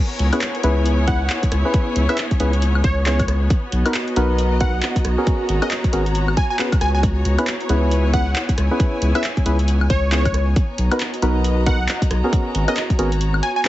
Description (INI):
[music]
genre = UK garage, two-step garage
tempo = 136 BPM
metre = 4/4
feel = swing 60% on 16ths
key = C# dorian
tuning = A4 = 440 Hz
[part]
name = clear studio string section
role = texture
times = 0.0-13.7 s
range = B3 to A#5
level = -27 LUFS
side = equal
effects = sidechain pumping
[part]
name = saturated sub bass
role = bass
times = 0.2-13.4 s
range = G#1 to C#2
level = -18 LUFS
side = equal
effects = none
[part]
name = punchy analog drum machine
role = drums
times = 0.2-13.7 s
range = handclaps, hi-hat, rim click, woodblock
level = -25 LUFS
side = left 1 dB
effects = none
[part]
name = percussive organ stab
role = stabs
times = 0.3-13.7 s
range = B3 to C#5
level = -24 LUFS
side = equal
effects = chorus, ping-pong delay
[part]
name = plucky unison lead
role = melody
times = 1.1-13.6 s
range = C#5 to G#5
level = -26 LUFS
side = equal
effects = phaser, ping-pong delay
[part]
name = electronic kick drum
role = drums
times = 1.1-13.0 s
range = none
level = -19 LUFS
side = equal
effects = none
[sound]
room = light reverb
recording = heavily compressed radio sound, multiband compression, vinyl crackle, nothing above 7.9 kHz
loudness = -16 LUFS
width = side -15 dB against mid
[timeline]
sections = 0.0-13.7 A section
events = kick drops out 13.2-13.7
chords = 0.0 C#m7; 3.5 Bmaj7; 5.3 G#m11; 7.0 C#m7; 10.6 Bmaj7; 12.3 G#m11